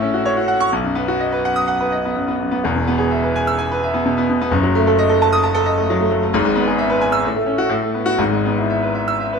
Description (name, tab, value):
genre	classical, virtuoso piano study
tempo	128 BPM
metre	4/4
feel	uneven beats, rubato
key	E major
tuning	A4 = 440 Hz
part	clear concert grand piano	solo	0.0-9.4 s	E1 to E6	-15 LUFS	equal	none
room	light reverb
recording	minimal, uncompressed stereo recording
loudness	-15 LUFS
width	side -5 dB against mid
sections	0.0-9.4 A section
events	none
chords	0.0 F#m/A; 0.7 B; 2.6 E; 4.5 D#dim/F#; 6.3 E/G#; 7.2 F#m/A; 7.7 B5/A; 8.2 E/G#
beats	0.24 | 0.72 1.20 1.68 2.16 | 2.64 3.11 3.58 4.05 | 4.51 4.97 5.43 5.89 | 6.34 6.79 7.24 7.71 | 8.20 8.70 9.20